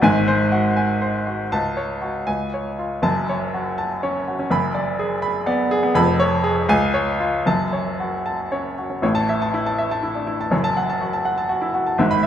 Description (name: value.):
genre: classical, virtuoso piano study.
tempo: 81 BPM (dotted quarters).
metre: 6/8.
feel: rubato.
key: F# minor, A major from 9.0 s.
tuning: A4 = 440 Hz.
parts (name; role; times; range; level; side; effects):
warm baby grand piano; solo; 0.0-12.3 s; E#1 to B5; -18 LUFS; equal; none.
room: wet recital hall reverb, RT60 1.4 s.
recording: minimal, uncompressed stereo recording.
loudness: -19 LUFS.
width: side -10 dB against mid.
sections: 0.0-9.0 A section; 9.0-12.3 B section.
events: none.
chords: 0.0 G#7; 1.5 F#m/C#; 2.3 C#; 3.0 F#m; 4.5 G#m7b5/F#; 5.9 C#7/E#; 6.7 C#; 7.5 F#m; 9.0 A; 10.5 F#m.